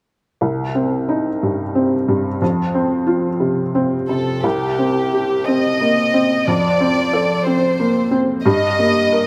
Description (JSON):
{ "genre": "neoclassical piano and strings", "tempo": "60 BPM (dotted quarters)", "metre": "6/8", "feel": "rubato", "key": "C dorian", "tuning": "A4 = 439 Hz", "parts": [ { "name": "felt-muted upright piano", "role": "accompaniment", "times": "0.4-9.3 s", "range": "C2 to Bb4", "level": "-19 LUFS", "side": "equal", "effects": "none" }, { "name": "warm chamber violin section", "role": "melody", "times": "4.1-9.3 s", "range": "G4 to Eb5", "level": "-21 LUFS", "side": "equal", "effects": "none" } ], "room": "light reverb", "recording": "close, detailed microphones", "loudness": "-18 LUFS", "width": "mono", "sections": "0.4-4.4 A section; 4.4-9.3 B section", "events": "none", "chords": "0.4 Cm; 2.4 F5; 4.4 Cm; 6.5 F; 8.4 Eb/G", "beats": "| 0.42 1.42 | 2.41 3.40 | 4.44 5.47 | 6.47 7.46 | 8.45" }